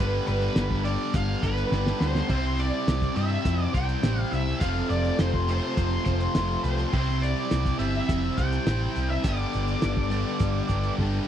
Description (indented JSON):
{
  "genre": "classic rock",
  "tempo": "104 BPM",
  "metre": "4/4",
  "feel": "straight",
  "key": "unclear",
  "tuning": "A4 = 440 Hz",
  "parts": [
    { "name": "octave-fuzz lead guitar", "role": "melody", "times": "0.0-10.9 s", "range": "B4 to G5", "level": "-31 LUFS", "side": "equal", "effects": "wah, distortion, slapback echo" },
    { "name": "distorted electric guitar", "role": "riff", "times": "0.0-11.3 s", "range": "F2 to C5", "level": "-35 LUFS", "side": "left 13 dB", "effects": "overdrive" },
    { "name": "overdriven electric guitar", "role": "riff", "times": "0.0-11.3 s", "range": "F2 to C5", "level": "-31 LUFS", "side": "equal", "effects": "none" },
    { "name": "tight distorted guitar", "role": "riff", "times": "0.0-11.3 s", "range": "F2 to C4", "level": "-34 LUFS", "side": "right 11 dB", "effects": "distortion" },
    { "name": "picked electric bass", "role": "bass", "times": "0.0-11.2 s", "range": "F1 to G2", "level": "-27 LUFS", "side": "equal", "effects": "none" },
    { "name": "cloth-damped thuddy drum kit", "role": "drums", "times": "0.3-11.1 s", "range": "crash cymbal, hi-hat, kick drum, snare drum", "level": "-28 LUFS", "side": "equal", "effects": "none" }
  ],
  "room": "little or no reverb",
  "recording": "dry, close 1970s-style studio recording",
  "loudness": "-23 LUFS",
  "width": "side -10 dB against mid",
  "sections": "0.0-11.3 A section",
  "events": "drum fill 1.7-2.3, 11.0",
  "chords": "0.0 G; 2.3 C; 4.6 F; 6.9 C; 9.2 G"
}